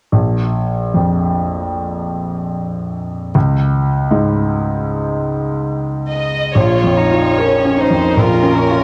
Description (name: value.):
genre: neoclassical piano and strings.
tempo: 68-79 BPM.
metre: 4/4.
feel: rubato.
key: Bb minor.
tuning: A4 = 439 Hz.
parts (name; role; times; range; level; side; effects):
felt-muted upright piano; accompaniment; 0.1-8.8 s; Bb1 to Bb4; -17 LUFS; equal; cassette tape.
warm chamber violin section; melody; 6.1-8.8 s; Bb4 to Eb5; -20 LUFS; equal; cassette tape.
warm cello; second line; 6.6-8.8 s; Db4 to F4; -21 LUFS; equal; cassette tape.
warm viola; accompaniment; 6.6-8.8 s; Db4 to F4; -24 LUFS; equal; none.
room: moderate lush hall reverb, RT60 3.2 s.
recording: home recording on cassette.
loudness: -16 LUFS.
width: mono.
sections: 0.1-6.6 A section; 6.6-8.8 B section.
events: none.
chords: 0.1 Bb5; 3.3 Db5; 6.6 Bbm.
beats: | 0.14 0.96 1.77 2.57 | 3.35 4.12 4.90 5.71 | 6.56 7.39 8.19.